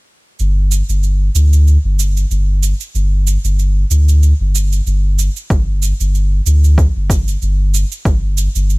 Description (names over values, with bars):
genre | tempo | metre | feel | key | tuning
organic downtempo | 94 BPM | 4/4 | swing 55% on 16ths | unclear | A4 = 438 Hz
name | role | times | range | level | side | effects
warm sub bass | bass | 0.4-8.8 s | G1 to D2 | -12 LUFS | equal | sidechain pumping
cabasa | drums | 0.4-8.8 s | none | -25 LUFS | right 8 dB | none
electronic kick drum | drums | 5.5-8.2 s | none | -13 LUFS | equal | none
room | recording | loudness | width
little or no reverb | bright 1980s-style digital production | -12 LUFS | side -24 dB against mid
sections
0.4-8.8 A section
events
none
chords
none